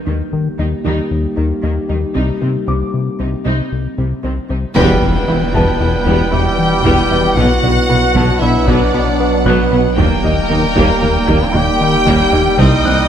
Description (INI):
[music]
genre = cinematic, hybrid orchestral and electronic film score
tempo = 115 BPM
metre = 5/4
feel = straight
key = E minor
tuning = A4 = 438 Hz
[part]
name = deep rumbling drone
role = sustained chords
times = 0.0-13.1 s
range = F#3 to B4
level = -22 LUFS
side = right 2 dB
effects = built-in reverb
[part]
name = clear grand piano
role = texture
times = 0.0-13.1 s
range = D#5 to G6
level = -28 LUFS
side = left 3 dB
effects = digital delay
[part]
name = rich symphonic viola section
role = accompaniment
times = 0.1-12.9 s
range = C3 to E4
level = -23 LUFS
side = right 1 dB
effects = none
[part]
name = analog pluck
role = arpeggios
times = 0.1-13.0 s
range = C3 to B4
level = -26 LUFS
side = right 2 dB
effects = none
[part]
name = fat analog bass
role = riff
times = 0.1-13.0 s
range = C2 to B3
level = -18 LUFS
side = left 3 dB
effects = none
[part]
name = warm symphonic cello section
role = bass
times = 0.1-12.9 s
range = C2 to D#3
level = -23 LUFS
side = right 2 dB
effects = none
[part]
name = taiko ensemble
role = drums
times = 0.3-0.6, 4.8-13.1 s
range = none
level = -23 LUFS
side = equal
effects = none
[part]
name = dark French horn section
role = sustained chords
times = 4.7-13.1 s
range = A#3 to B4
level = -23 LUFS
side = left 2 dB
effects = none
[part]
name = clear duduk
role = melody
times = 4.8-13.1 s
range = A#3 to G4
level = -21 LUFS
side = right 3 dB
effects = digital delay
[part]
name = warm chamber violin section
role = melody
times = 4.8-13.1 s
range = F#5 to G5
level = -23 LUFS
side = left 1 dB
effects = none
[part]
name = warm studio violin section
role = second line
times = 4.8-13.1 s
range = A#4 to G5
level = -19 LUFS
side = left 2 dB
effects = none
[part]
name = clear trombone section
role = sustained chords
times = 4.8-13.1 s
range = G2 to G3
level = -23 LUFS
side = right 3 dB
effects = none
[part]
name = warm studio double bass section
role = bass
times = 4.8-12.9 s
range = E1 to D#2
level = -23 LUFS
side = right 3 dB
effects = none
[part]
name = warm sub bass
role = bass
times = 4.8-13.1 s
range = D#1 to C2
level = -22 LUFS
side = equal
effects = none
[part]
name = warm tuba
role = bass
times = 4.8-13.0 s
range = E1 to D#2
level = -23 LUFS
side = right 3 dB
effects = none
[part]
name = impact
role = sound effects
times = 4.8-7.4 s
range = none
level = -24 LUFS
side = equal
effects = none
[sound]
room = moderate scoring stage reverb, RT60 1.6 s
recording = none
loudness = -12 LUFS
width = side -9 dB against mid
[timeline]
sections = 0.0-4.8 A section; 4.8-13.1 B section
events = build-up 0.0-4.8; band accent 4.8-5.3; impact 4.8-7.4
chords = 0.0 D#; 2.2 Cm; 4.8 Em; 7.4 Bm; 10.0 D#